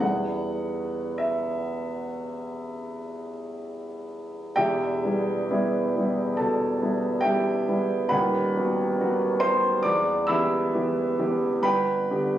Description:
classical, romantic nocturne for solo piano; 49-72 BPM; 4/4; rubato; E minor; A4 = 441 Hz
warm concert grand piano; solo; 0.0-12.4 s; D#1 to E6; -23 LUFS; equal
moderate recital hall reverb, RT60 1.4 s; recorded on a phone in the room, studio reverb; -22 LUFS; side -12 dB against mid
0.0-4.6 A section; 4.6-12.4 B section
0.0 Em; 8.1 B/D#; 9.9 Em; 11.7 G

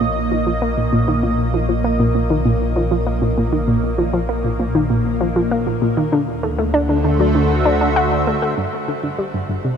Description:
ambient; 98 BPM; 4/4; straight; A4 = 439 Hz
lush unison pad; sustained chords; 0.0-9.8 s; Bb2 to E5; -20 LUFS; equal; chorus, phaser, shimmer reverb
analog pluck; riff; 0.0-9.7 s; G2 to F#4; -19 LUFS; equal; chorus, tape echo, shimmer reverb
warm sub bass; bass; 0.0-9.8 s; G1 to D2; -23 LUFS; equal
wet huge ambient reverb, RT60 7.8 s; -16 LUFS; side -7 dB against mid
0.0-8.6 A section; 8.6-9.8 B section
filter sweep on synth arpeggio sound 0.0-8.6
0.0 Bbm; 6.1 D7; 8.6 Gsus2

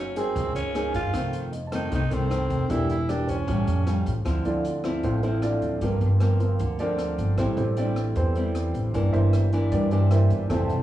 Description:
bossa nova; 154 BPM; 4/4; straight; D minor from 4.3 s; A4 = 441 Hz
growling tenor saxophone; melody; 0.0-4.1 s; C4 to F4; -30 LUFS; right 1 dB; cassette tape, plate reverb
nylon-string guitar; accompaniment; 0.0-10.8 s; F2 to Ab4; -28 LUFS; left 1 dB; cassette tape, plate reverb
warm concert grand piano; accompaniment; 0.0-10.8 s; E3 to A5; -30 LUFS; right 4 dB; cassette tape, plate reverb
upright bass; bass; 0.0-10.8 s; E1 to G2; -25 LUFS; equal
open jazz drum kit; drums; 0.2-10.8 s; hi-hat, kick drum, rim click; -36 LUFS; right 1 dB; cassette tape
dark brass ensemble; sustained chords; 10.5-10.8 s; E5 to A5; -33 LUFS; left 2 dB; cassette tape, plate reverb
light reverb; home recording on cassette, studio reverb; -22 LUFS; side -13 dB against mid
0.0-4.3 A section; 4.3-10.8 B section
grand piano solo 4.3-10.8
0.0 Gb69; 1.1 F7; 2.7 Em7b5; 3.5 A7alt; 4.3 Dm9; 5.8 Gm11; 7.4 Am7; 8.9 C9/G

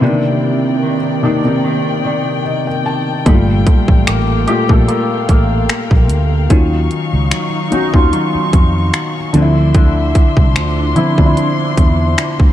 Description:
contemporary R&B; 74 BPM; 4/4; swing 54% on 16ths; G minor; A4 = 440 Hz
felt-muted upright piano; accompaniment; 0.0-12.5 s; Bb2 to A5; -17 LUFS; left 2 dB
dark studio string section; sustained chords; 0.0-12.5 s; C3 to Db6; -22 LUFS; left 2 dB
electric guitar with an envelope filter; arpeggios; 0.0-12.5 s; C3 to A4; -20 LUFS; right 1 dB; lush chorus, tape echo
fingered electric bass; bass; 3.3-12.5 s; G1 to F2; -15 LUFS; equal
trap drum kit; drums; 3.3-12.5 s; finger snaps, hi-hat, kick drum; -12 LUFS; equal; overdrive
light reverb; dark, warm production; -11 LUFS; side -12 dB against mid
0.0-12.5 A section
felt piano fill 1.6-3.3
0.0 Cm9; 3.3 Gm9; 6.5 Ebm9; 9.3 Dm9

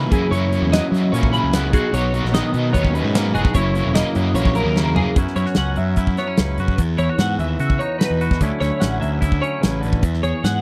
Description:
math rock and midwest emo; 148 BPM; 4/4; straight; A4 = 440 Hz
twangy electric guitar; accompaniment; 0.0-10.6 s; E2 to G#4; -26 LUFS; equal
twelve-string electric guitar; arpeggios; 0.0-10.6 s; G#4 to B5; -27 LUFS; equal; ensemble chorus
crunchy overdriven guitar; riff; 0.0-5.2 s; F#2 to E4; -26 LUFS; equal; harmonic tremolo
fuzz picked electric bass; bass; 0.0-10.6 s; E1 to F#3; -24 LUFS; equal; overdrive
modern studio drum kit; drums; 0.1-10.5 s; hi-hat, kick drum, snare drum, toms; -21 LUFS; equal
little or no reverb; dry, close 1970s-style studio recording; -19 LUFS; mono
0.0-5.2 A section; 5.2-10.6 B section
drum fill 4.8-5.2
0.0 F#9sus4; 1.7 Bmaj9; 3.5 F#13; 5.2 F#7sus4; 6.8 Emaj7sus2; 8.4 Dmaj9; 10.0 Eadd9

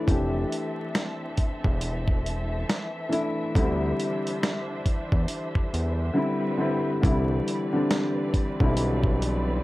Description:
lo-fi hip hop; 69 BPM; 4/4; swing 61% on 16ths; C major; A4 = 438 Hz
felt-muted upright piano; accompaniment; 0.0-9.6 s; D3 to G4; -28 LUFS; left 1 dB; low-pass filter
rich studio string section; sustained chords; 0.0-9.6 s; E3 to E5; -34 LUFS; equal; low-pass filter
fat analog bass; bass; 0.1-9.6 s; E1 to E2; -27 LUFS; equal
dusty soul sampler-style drum kit; drums; 0.1-9.5 s; finger snaps, hi-hat, kick drum, snare drum; -25 LUFS; equal
light reverb; vinyl crackle; -24 LUFS; side -18 dB against mid
0.0-7.0 A section; 7.0-9.6 B section
drums muted 6.2-7.0
0.1 Fmaj7; 3.6 Dsus2; 6.2 Cmaj7; 7.0 Cmaj9

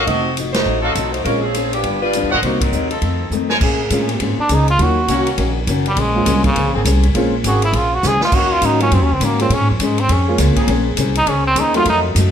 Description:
jazz, big band swing; 204 BPM; 4/4; swing 62% on 8ths; Bb minor; A4 = 442 Hz
warm saxophone section; melody; 0.0-3.3 s; F3 to Eb5; -20 LUFS; equal; plate reverb
brilliant trumpet section; stabs; 0.0-3.6 s; Gb4 to Ab5; -20 LUFS; right 1 dB
upright bass; bass; 0.0-12.3 s; F1 to Bb2; -18 LUFS; right 1 dB
fingerpicked steel-string acoustic guitar; accompaniment; 0.1-12.3 s; F2 to C5; -23 LUFS; left 7 dB
warm concert grand piano; accompaniment; 0.1-11.9 s; Gb3 to Gb4; -22 LUFS; right 2 dB
swinging big-band drum kit; drums; 0.1-12.2 s; crash cymbal, hi-hat, kick drum, ride cymbal, snare drum; -23 LUFS; equal
bright trombone section; sustained chords; 3.6-12.1 s; Db3 to Ab4; -23 LUFS; equal
trombone with metal mute; melody; 4.4-12.0 s; Db3 to Ab4; -17 LUFS; right 1 dB; plate reverb
moderate large studio reverb, RT60 0.8 s; -14 LUFS; side -8 dB against mid
0.0-3.6 A section; 3.6-12.3 B section
band accent 0.5, 2.6; drum fill 3.3, 8.0; trombone solo 3.6-12.3
0.1 F7b9; 1.3 Bbm9; 1.8 G7; 2.4 Cm7b5; 3.0 F7; 3.6 Bbm9; 4.8 Ebm7; 6.0 Bbm9; 8.3 Ebm7; 9.5 Bbm9

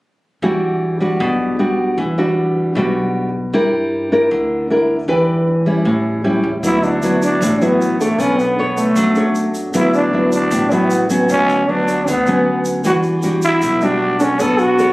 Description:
bossa nova; 155 BPM; 4/4; straight; A4 = 442 Hz
nylon-string guitar; accompaniment; 0.4-14.9 s; A2 to C#5; -15 LUFS; equal
upright bass; bass; 0.4-14.9 s; A1 to G2; -28 LUFS; equal
egg shaker; percussion; 6.6-14.9 s; -32 LUFS; right 1 dB
growling trombone; melody; 6.7-14.9 s; A3 to A4; -16 LUFS; equal
light reverb; recorded on a phone in the room, club reverb; -14 LUFS; side -19 dB against mid
0.4-6.6 A section; 6.6-14.9 B section
0.4 Em9; 3.5 Gm6; 5.1 Em7; 5.9 A7; 6.6 D69; 8.2 Bm9; 9.7 D69; 11.3 Bmadd9/D; 12.8 Em9; 14.4 Bm9

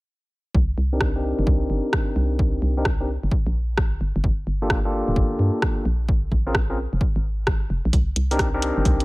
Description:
UK garage, two-step garage; 130 BPM; 4/4; swing 65% on 16ths; C minor; A4 = 440 Hz
hollow knocking FM bass; bass; 0.5-9.0 s; D1 to G2; -23 LUFS; equal
electronic kick drum; drums; 0.5-9.0 s; -22 LUFS; equal
overdriven tine electric piano; stabs; 0.9-9.0 s; Bb3 to Bb4; -25 LUFS; left 1 dB; low-pass filter, dub echo
punchy analog drum machine; drums; 1.0-9.0 s; hi-hat, rim click; -26 LUFS; equal
digital ambience; -20 LUFS; side -22 dB against mid
0.5-9.0 A section
filter sweep on tine electric piano 0.5-9.0
0.5 Cm9; 4.0 Gm9; 5.9 Bb7(no3); 7.9 Cm9

